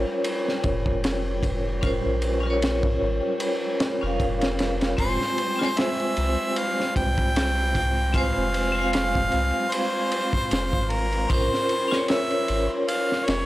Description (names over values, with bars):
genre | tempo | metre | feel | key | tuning
trip hop | 76 BPM | 4/4 | swing 56% on 16ths | F harmonic minor | A4 = 443 Hz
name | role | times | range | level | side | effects
vibraphone with hard mallets | accompaniment | 0.0-13.5 s | Ab3 to F5 | -26 LUFS | equal | tremolo
soft dub sub bass | bass | 0.0-13.5 s | F1 to C2 | -27 LUFS | equal | none
flickering grainy texture | texture | 0.0-13.5 s | G3 to G5 | -38 LUFS | equal | built-in reverb
crunchy breakbeat drum kit | drums | 0.2-13.5 s | kick drum, ride cymbal, snare drum | -27 LUFS | equal | none
clear harmonica | melody | 5.0-13.5 s | Bb4 to G5 | -26 LUFS | equal | tape echo
room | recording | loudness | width
light reverb, small room ambience | dry, gritty hardware recording | -21 LUFS | side -16 dB against mid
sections
0.0-13.5 A section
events
none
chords
0.0 Bbmadd9; 5.0 Fm; 11.3 Bbmadd9